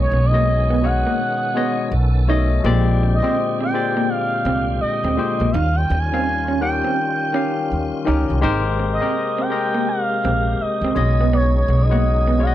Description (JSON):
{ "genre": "R&B", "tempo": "83 BPM", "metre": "4/4", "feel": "swing 61% on 16ths", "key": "unclear", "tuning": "A4 = 440 Hz", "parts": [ { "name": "expressive portamento lead", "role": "melody", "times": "0.0-12.5 s", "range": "C#5 to Ab5", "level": "-22 LUFS", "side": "right 2 dB", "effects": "chorus" }, { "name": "barky tine electric piano", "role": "accompaniment", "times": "0.0-12.5 s", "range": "Bb2 to G5", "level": "-23 LUFS", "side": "left 6 dB", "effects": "overdrive" }, { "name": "tonewheel organ", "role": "sustained chords", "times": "0.0-12.5 s", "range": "C3 to A4", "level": "-30 LUFS", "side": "right 1 dB", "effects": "chorus vibrato, slow rotary speaker" }, { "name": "upright bass", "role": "bass", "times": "0.0-12.5 s", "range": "Ab1 to Eb2", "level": "-19 LUFS", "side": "equal", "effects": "none" }, { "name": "electric guitar through a small old amp", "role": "second line", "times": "0.1-12.4 s", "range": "Bb3 to D#4", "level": "-24 LUFS", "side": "right 4 dB", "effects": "tremolo" } ], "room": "little or no reverb", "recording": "none", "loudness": "-16 LUFS", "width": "side -13 dB against mid", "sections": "0.0-12.5 A section", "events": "none", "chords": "0.0 B69; 1.9 B9; 2.6 Bb13; 5.5 Eb9; 8.4 Abmaj9; 11.0 B69" }